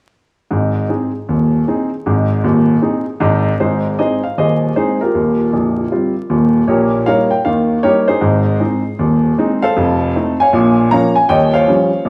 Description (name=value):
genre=jazz, stride piano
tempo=156 BPM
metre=4/4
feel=swing 65% on 8ths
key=Ab major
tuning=A4 = 440 Hz
part: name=clear grand piano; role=solo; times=0.5-12.1 s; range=Bb0 to Bb5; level=-14 LUFS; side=equal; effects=none
room=wet large studio reverb, RT60 1.3 s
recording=band playing live in one room, vinyl crackle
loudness=-15 LUFS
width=mono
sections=0.5-3.6 A section; 3.6-12.1 B section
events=none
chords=0.5 Ab; 5.1 Eb69; 6.7 Eb7/Bb; 8.2 Ab; 9.8 F7; 10.5 Bbm; 11.3 Eb13